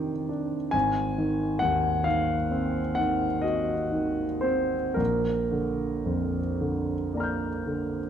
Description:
classical, impressionist solo piano; 37-48 BPM (dotted quarters); 9/8; rubato; A4 = 439 Hz
warm grand piano; solo; 0.0-8.1 s; Ab1 to G6; -25 LUFS; equal
moderate concert hall reverb, RT60 1.9 s; close, detailed microphones; -25 LUFS; side -9 dB against mid
0.0-8.1 A section
0.0 Fsus2; 0.7 Ab7; 5.0 Bb6

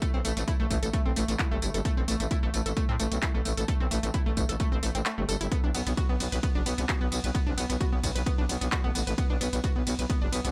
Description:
driving peak-time techno; 131 BPM; 4/4; straight; A4 = 441 Hz
analog pluck; riff; 0.0-10.5 s; A3 to B4; -36 LUFS; equal; chorus, tube saturation, sidechain pumping, dub echo
electronic kick drum; drums; 0.0-10.2 s; -31 LUFS; equal
techno drum kit; drums; 0.0-10.5 s; handclaps, hi-hat, ride cymbal, tambourine; -37 LUFS; equal
growling FM bass; bass; 0.1-10.5 s; F#1 to A2; -33 LUFS; equal; sidechain pumping
digital ambience; echo-heavy mix; -28 LUFS; mono
0.0-10.5 A section
kick drops out 5.1-5.5
0.0 N.C.; 5.5 B5

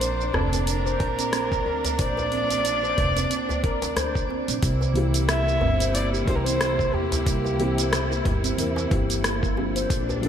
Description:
organic downtempo; 91 BPM; 4/4; swing 57% on 16ths; C mixolydian; A4 = 440 Hz
dark kamancheh; melody; 0.0-8.3 s; G4 to E5; -28 LUFS; equal; ping-pong delay
clear symphonic string section; sustained chords; 0.0-10.3 s; Bb2 to A4; -32 LUFS; equal; sidechain pumping
handpan; arpeggios; 0.0-10.2 s; Bb3 to C5; -29 LUFS; right 2 dB; ping-pong delay
upright bass; bass; 0.0-10.3 s; F1 to E2; -27 LUFS; equal
deep house drum kit; drums; 0.0-10.3 s; hi-hat, rim click, shaker; -29 LUFS; equal; gated reverb
twinkling granular texture; texture; 0.0-4.6 s; D5; -40 LUFS; right 2 dB
djembe; percussion; 0.3-10.2 s; -33 LUFS; left 1 dB
electronic kick drum; drums; 1.0-10.1 s; -26 LUFS; equal; overdrive
felt-muted upright piano; accompaniment; 4.9-10.3 s; E3 to Bb4; -30 LUFS; left 3 dB; sidechain pumping, ping-pong delay
moderate plate reverb, RT60 3.6 s; bright 1980s-style digital production; -21 LUFS; side -9 dB against mid
0.0-4.6 A section; 4.6-10.3 B section
0.0 Bb; 4.6 C7

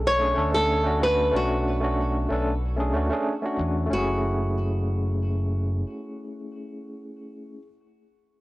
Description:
sunset chillout; 93 BPM; 4/4; straight; F# minor; A4 = 440 Hz
flamenco guitar; melody; 0.0-7.6 s; F#4 to C#5; -26 LUFS; equal; tape echo
overdriven fingered electric bass; bass; 0.0-5.8 s; F#1 to E2; -26 LUFS; equal
overdriven tine electric piano; accompaniment; 0.2-7.7 s; A3 to A4; -28 LUFS; equal; fast tremolo, auto-pan, analog delay
light reverb, studio ambience; transformer saturation, cassette tape; -22 LUFS; side -18 dB against mid
0.0-3.9 A section; 3.9-6.5 B section
0.0 Bm9; 3.9 F#m9

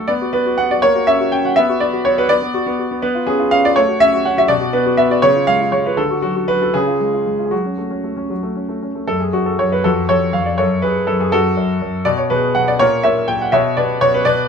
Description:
classical-period piano sonatina; 81 BPM (dotted quarters); 6/8; rubato; F# minor; A4 = 440 Hz
clear concert grand piano; solo; 0.0-14.5 s; F2 to G5; -14 LUFS; equal
light reverb; -14 LUFS; side -6 dB against mid
0.0-9.1 A section; 9.1-14.5 A section
0.1 B5; 0.8 F#/A#; 1.6 Bm; 3.0 C#7/B; 3.8 F#m/A; 4.5 B5; 5.2 C#; 6.0 D; 6.7 C#; 7.5 F#m; 9.1 N.C.; 9.8 Faug; 10.6 F#m; 12.1 Bm69; 12.8 A#dim7; 13.5 Bm

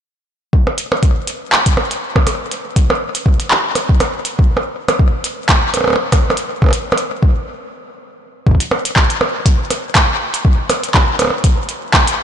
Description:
IDM; 121 BPM; 4/4; swing 56% on 16ths
electronic kick drum; drums; 0.5-12.0 s; -12 LUFS; equal; overdrive, small room reverb
glitchy drum kit; drums; 0.7-12.2 s; handclaps, hi-hat, percussion blips; -16 LUFS; right 1 dB; small room reverb, ping-pong delay
light reverb; blown-out, overdriven recording, overdrive, nothing above 10.9 kHz; -13 LUFS; side -9 dB against mid
0.5-8.5 A section; 8.5-12.2 B section
stop 7.5-8.5

